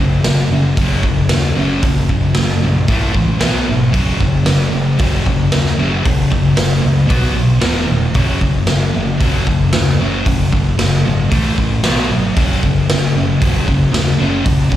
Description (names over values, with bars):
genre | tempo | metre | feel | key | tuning
garage rock duo or trio | 114 BPM | 4/4 | straight | unclear | A4 = 440 Hz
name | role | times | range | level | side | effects
thick fuzz guitar | riff | 0.0-14.8 s | E2 to B3 | -15 LUFS | left 1 dB | distortion
growling picked electric bass | bass | 0.0-14.8 s | E1 to D#2 | -20 LUFS | equal | overdrive
raw garage drum kit | drums | 0.2-14.8 s | hi-hat, kick drum, snare drum | -17 LUFS | equal | none
room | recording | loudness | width
studio ambience | live gig heard through the venue's PA, club reverb | -12 LUFS | side -12 dB against mid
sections
0.0-14.8 A section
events
none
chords
0.0 F#5; 2.9 A5; 3.4 B5; 3.9 F#5; 7.1 B5; 7.6 E5; 8.2 F#5; 11.3 A5; 11.8 B5; 12.4 F#5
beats
0.25 0.78 1.31 | 1.83 2.36 2.89 3.42 | 3.94 4.47 5.00 5.52 | 6.05 6.57 7.10 7.62 | 8.15 8.68 9.20 9.73 | 10.25 10.78 11.30 11.83 | 12.36 12.88 13.41 13.93 | 14.46